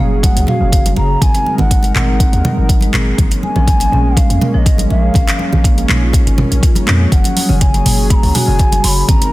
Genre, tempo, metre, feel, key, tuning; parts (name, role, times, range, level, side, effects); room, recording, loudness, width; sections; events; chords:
afro house; 122 BPM; 4/4; straight; A4 = 441 Hz
hollow bansuri; melody; 0.0-9.3 s; Eb5 to C6; -20 LUFS; equal; digital delay
warm analog pad; sustained chords; 0.0-9.3 s; Gb3 to Bb4; -23 LUFS; equal; chorus, sidechain pumping
marimba with medium mallets; arpeggios; 0.0-9.3 s; Db3 to Bb4; -21 LUFS; equal; sidechain pumping
warm 808-style bass; bass; 0.0-9.2 s; Gb1 to F2; -15 LUFS; equal; sidechain pumping
afro-pop drum kit; drums; 0.2-9.3 s; handclaps, hi-hat, toms; -18 LUFS; right 1 dB; studio reverb
electronic kick drum; drums; 0.2-9.2 s; -12 LUFS; equal; studio reverb
congas; percussion; 0.2-9.3 s; -22 LUFS; right 2 dB
light reverb, studio reverb; dense, heavily limited modern master; -10 LUFS; side -18 dB against mid
0.0-9.3 A section
0.0 Gbmaj7; 1.2 Ab7; 3.2 Bbm7; 7.1 Gb5